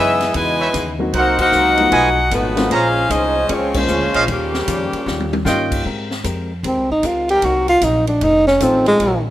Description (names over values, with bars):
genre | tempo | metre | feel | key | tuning
jazz, big band swing | 152 BPM | 4/4 | swing 65% on 8ths | Ab major | A4 = 440 Hz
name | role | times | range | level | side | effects
edgy saxophone section | melody | 0.0-5.4 s | F3 to Ab5 | -17 LUFS | left 2 dB | none
bright trombone section | second line | 0.0-5.4 s | Bb2 to Gb4 | -22 LUFS | right 4 dB | none
hollow-body jazz guitar | accompaniment | 0.0-9.3 s | F2 to C5 | -28 LUFS | left 4 dB | none
clear trumpet section | stabs | 0.0-5.9 s | Eb4 to Bb5 | -20 LUFS | right 3 dB | none
upright bass | bass | 0.0-9.3 s | F1 to Ab2 | -24 LUFS | equal | none
swinging big-band drum kit | drums | 0.2-9.1 s | crash cymbal, hi-hat, kick drum, ride cymbal, snare drum, toms | -27 LUFS | equal | none
warm baby grand piano | accompaniment | 1.0-5.9, 8.6-9.0 s | Gb3 to C5 | -22 LUFS | left 2 dB | none
breathy tenor saxophone | melody | 6.7-9.2 s | Ab3 to G4 | -14 LUFS | right 1 dB | none
bright trombone section | sustained chords | 7.3-9.2 s | F3 to Bb4 | -29 LUFS | equal | none
room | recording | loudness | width
light reverb, studio ambience | rough home demo mix | -14 LUFS | side -13 dB against mid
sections
0.0-5.9 A section; 5.9-9.3 B section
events
band accent 1.3, 3.7; drum fill 5.1-5.5; tenor saxophone solo 5.9-9.3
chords
0.0 Dbm9; 1.1 Cm7b5; 1.9 B7#11; 2.7 Bbm9; 4.3 Eb9; 5.9 Abmaj9; 7.4 Cm7b5; 8.2 F7b13